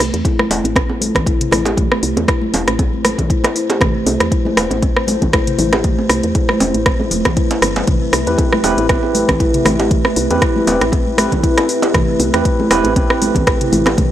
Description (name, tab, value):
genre	afro house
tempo	118 BPM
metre	4/4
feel	swing 55% on 16ths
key	A minor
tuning	A4 = 440 Hz
part	dark analog pad	sustained chords	0.0-14.1 s	A3 to E5	-24 LUFS	left 2 dB	lush chorus, sidechain pumping
part	woody FM bass	bass	0.0-14.1 s	E1 to E2	-22 LUFS	equal	sidechain pumping
part	afro-pop drum kit	drums	0.0-14.1 s	hi-hat, rim click, toms	-18 LUFS	equal	none
part	buzzing kalimba	arpeggios	0.2-14.1 s	E3 to A4	-20 LUFS	equal	sidechain pumping, low-pass filter, analog delay
part	electronic kick drum	drums	0.2-14.1 s	none	-17 LUFS	equal	none
part	djembe	percussion	0.3-14.0 s	none	-23 LUFS	right 2 dB	none
part	congas	percussion	0.4-14.1 s	none	-22 LUFS	left 2 dB	none
part	tine electric piano	stabs	8.3-14.1 s	C4 to B4	-19 LUFS	right 4 dB	slow stereo tremolo, sidechain pumping, low-pass filter, analog delay
room	light reverb, small room ambience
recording	dry, gritty hardware recording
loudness	-12 LUFS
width	side -12 dB against mid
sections	0.0-14.1 A section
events	filter sweep on kalimba 0.0-14.1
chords	0.0 Am9